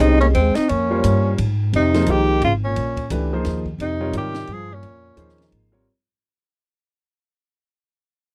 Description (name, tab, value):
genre	modal jazz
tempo	174 BPM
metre	3/4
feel	swing 62% on 8ths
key	unclear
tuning	A4 = 440 Hz
part	warm tenor saxophone	melody	0.0-5.5 s	C4 to Ab4	-23 LUFS	equal	none
part	mellow trombone	second line	0.0-5.5 s	Bb2 to C4	-27 LUFS	equal	none
part	clear baby grand piano	accompaniment	0.0-5.9 s	C3 to Eb5	-26 LUFS	equal	none
part	upright bass	bass	0.0-5.8 s	Ab1 to Ab2	-23 LUFS	equal	none
part	compact cocktail drum kit	drums	0.2-5.6 s	hi-hat, kick drum, ride cymbal, snare drum	-37 LUFS	equal	none
room	little or no reverb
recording	dry, close 1970s-style studio recording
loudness	-19 LUFS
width	mono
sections	0.0-1.7 A section; 1.7-5.9 B section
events	fade-out 1.7-5.9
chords	0.0 Bbm11